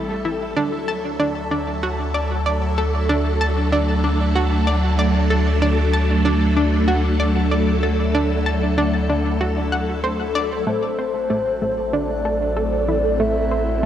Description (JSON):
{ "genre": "ambient, sequencer-driven space music", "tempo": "95 BPM", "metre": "4/4", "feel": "straight", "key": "unclear", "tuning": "A4 = 440 Hz", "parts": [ { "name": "phased string machine", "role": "sustained chords", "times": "0.0-13.9 s", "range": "F#3 to A4", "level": "-22 LUFS", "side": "equal", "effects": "ensemble chorus, phaser" }, { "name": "analog pluck", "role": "riff", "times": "0.0-13.9 s", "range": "A3 to A5", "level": "-23 LUFS", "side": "right 1 dB", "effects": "chorus, analog delay" }, { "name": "warm sub bass", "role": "bass", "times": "0.0-13.9 s", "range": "A1 to D2", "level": "-22 LUFS", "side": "equal", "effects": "none" }, { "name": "bubbling stepped-filter texture", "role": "texture", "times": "0.0-13.9 s", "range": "F#3 to F#6", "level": "-36 LUFS", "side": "left 1 dB", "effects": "chorus, built-in reverb" }, { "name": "soft octave-layered synth lead", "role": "melody", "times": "10.7-13.9 s", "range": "C5 to E5", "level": "-23 LUFS", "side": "left 1 dB", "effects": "chorus, analog delay" } ], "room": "moderate plate reverb, RT60 3.3 s", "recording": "none", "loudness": "-17 LUFS", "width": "side -10 dB against mid", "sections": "0.0-13.9 A section", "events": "fade-in on synth texture 0.0-13.9", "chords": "0.0 Am7; 0.6 D; 10.7 Am" }